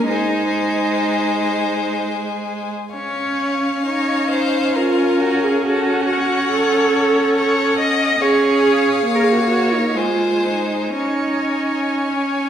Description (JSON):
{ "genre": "classical, slow romantic movement for string quartet", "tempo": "51-73 BPM", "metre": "3/4", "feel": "rubato", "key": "Db major", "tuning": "A4 = 441 Hz", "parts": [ { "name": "clear violin", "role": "melody", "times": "0.0-12.5 s", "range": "F5 to Ab5", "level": "-26 LUFS", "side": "left 7 dB", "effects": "none" }, { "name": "rich violin", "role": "second line", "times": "0.0-12.5 s", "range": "A4 to Eb5", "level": "-22 LUFS", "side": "left 3 dB", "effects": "none" }, { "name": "rich viola", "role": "accompaniment", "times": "0.0-12.5 s", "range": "Ab3 to Db4", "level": "-21 LUFS", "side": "right 2 dB", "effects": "none" }, { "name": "rich cello", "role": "bass", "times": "0.0-12.5 s", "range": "Db4 to Bb4", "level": "-20 LUFS", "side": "right 2 dB", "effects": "none" } ], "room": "wet recital hall reverb, RT60 1.8 s", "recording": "heard from further back in the room", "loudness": "-16 LUFS", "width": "side -9 dB against mid", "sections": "0.0-12.5 A section", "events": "none", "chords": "0.1 Ab; 2.9 Db; 5.6 Gbm/Db; 8.2 Db; 9.1 Bbm; 10.0 Ab; 11.0 Db5", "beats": "| 0.08 1.04 2.00 | 2.94 3.86 4.75 | 5.65 6.52 7.36 | 8.20 9.07 9.97 | 10.97 12.09" }